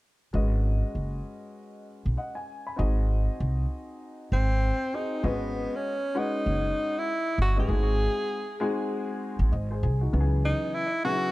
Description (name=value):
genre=hip hop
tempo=98 BPM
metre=4/4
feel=swing 59% on 16ths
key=unclear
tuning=A4 = 440 Hz
part: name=dark upright piano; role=accompaniment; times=0.3-11.3 s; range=C#3 to B5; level=-33 LUFS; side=left 2 dB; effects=none
part: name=upright bass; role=bass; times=0.3-10.5 s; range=F#1 to C#2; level=-25 LUFS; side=equal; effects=none
part: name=breathy tenor saxophone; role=melody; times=4.3-11.3 s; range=B3 to G#4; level=-28 LUFS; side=equal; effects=analog delay
room=little or no reverb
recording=echo-heavy mix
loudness=-25 LUFS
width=side -19 dB against mid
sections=0.3-5.2 A section; 5.2-11.3 B section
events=none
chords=0.3 G#m7; 2.8 G#7; 5.2 G#m7; 7.7 G#7; 10.1 C#m9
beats=| 0.34 0.95 1.57 2.18 | 2.79 3.40 4.01 4.63 | 5.24 5.85 6.46 7.08 | 7.69 8.30 8.91 9.53 | 10.14 10.75